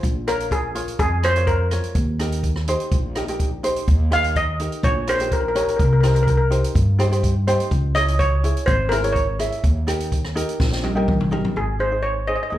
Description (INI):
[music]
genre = calypso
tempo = 125 BPM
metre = 4/4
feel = straight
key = unclear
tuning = A4 = 440 Hz
[part]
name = ukulele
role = accompaniment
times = 0.0-12.6 s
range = Eb4 to Fb5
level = -26 LUFS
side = equal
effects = slapback echo
[part]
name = upright bass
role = bass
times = 0.0-12.6 s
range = Ab1 to G2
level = -21 LUFS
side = equal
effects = none
[part]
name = open jazz drum kit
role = drums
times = 0.0-11.6 s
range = hi-hat, kick drum, rim click, snare drum, toms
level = -24 LUFS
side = equal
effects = none
[part]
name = steel pan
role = melody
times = 0.3-12.6 s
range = Ab4 to F5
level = -22 LUFS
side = left 1 dB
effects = slapback echo
[sound]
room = light reverb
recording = live gig heard through the venue's PA, club reverb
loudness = -18 LUFS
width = side -13 dB against mid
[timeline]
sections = 0.0-11.6 A section; 11.6-12.6 B section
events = steel pan solo 0.0-11.6; drum fill 10.6-11.6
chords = 0.0 Bbm7; 2.0 Eb; 3.9 Eb7; 5.8 Cm; 7.7 Dbm; 9.6 Eb; 11.6 Ab